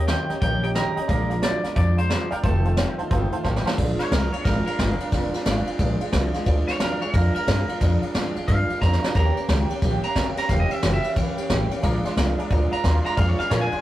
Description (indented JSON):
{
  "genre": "rockabilly",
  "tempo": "179 BPM",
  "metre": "4/4",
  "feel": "swing 64% on 8ths",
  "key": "Bb mixolydian",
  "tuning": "A4 = 442 Hz",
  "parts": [
    { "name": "clean electric guitar", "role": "melody", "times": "0.0-13.8 s", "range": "A4 to Bb5", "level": "-28 LUFS", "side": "right 2 dB", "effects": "none" },
    { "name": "honky-tonk upright piano", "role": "accompaniment", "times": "0.0-3.7, 11.8-13.8 s", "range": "C5 to C6", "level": "-32 LUFS", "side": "right 1 dB", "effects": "none" },
    { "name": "picked steel-string acoustic guitar", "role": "accompaniment", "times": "0.0-13.8 s", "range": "F2 to G4", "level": "-28 LUFS", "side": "equal", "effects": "none" },
    { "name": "upright bass", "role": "bass", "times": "0.0-13.7 s", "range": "E1 to Bb2", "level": "-23 LUFS", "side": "equal", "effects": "none" },
    { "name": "vintage brush drum kit", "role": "drums", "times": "0.1-13.8 s", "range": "crash cymbal, hi-hat, kick drum, ride cymbal, snare drum", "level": "-25 LUFS", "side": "equal", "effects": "none" }
  ],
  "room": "wet booth ambience, RT60 0.2 s",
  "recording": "rough rehearsal-room recording, warm saturation",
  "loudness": "-20 LUFS",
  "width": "side -14 dB against mid",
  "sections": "0.0-3.8 A section; 3.8-13.8 B section",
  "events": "drum fill 3.4-3.8, 8.8-9.2; clean electric guitar solo 3.8-13.8",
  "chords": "0.0 Eb7; 1.1 Bb7; 2.4 F7; 3.8 Bb7; 9.2 Eb7; 10.5 Edim7; 11.8 Bb7"
}